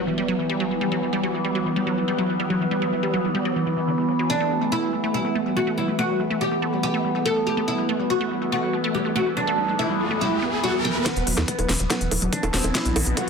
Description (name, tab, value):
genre	psychedelic trance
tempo	142 BPM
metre	4/4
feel	straight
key	E minor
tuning	A4 = 440 Hz
part	overtone-sweeping drone	sustained chords	0.0-13.3 s	E3 to B3	-26 LUFS	right 1 dB	chorus, built-in reverb, sidechain pumping
part	wide unison pluck	riff	0.1-13.2 s	D3 to A4	-26 LUFS	equal	auto-pan, sidechain pumping, dub echo
part	oud	melody	4.3-13.3 s	B3 to A4	-25 LUFS	equal	phaser, sidechain pumping, tape echo
part	riser	sound effects	8.8-13.3 s	none	-32 LUFS	equal	none
part	drum and bass drum kit	drums	11.1-13.3 s	bongos, hi-hat, snare drum	-24 LUFS	right 1 dB	soft clipping on snare, low-pass filter on snare, low-pass filter on hats, low-pass filter on perc, low-pass filter on cymbals
part	electronic kick drum	drums	11.1-13.3 s	none	-30 LUFS	equal	overdrive, high-pass filter on kick
part	tight sequencer bass	bass	11.2-13.1 s	E1 to E2	-25 LUFS	equal	none
room	moderate digital room reverb, RT60 1.2 s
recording	dense, heavily limited modern master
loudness	-21 LUFS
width	side -5 dB against mid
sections	0.0-11.1 A section; 11.1-13.3 B section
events	riser 8.8-11.1; build-up 11.1-13.3; drum fill 11.1-13.3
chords	0.0 E5; 4.3 Emadd11; 11.1 E5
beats	0.07 0.49 | 0.92 1.34 1.76 2.19 | 2.61 3.03 3.45 3.88 | 4.30 4.72 5.14 5.57 | 5.99 6.41 6.83 7.26 | 7.68 8.10 8.52 8.95 | 9.37 9.79 10.21 10.64 | 11.06 11.48 11.90 12.33 | 12.75 13.17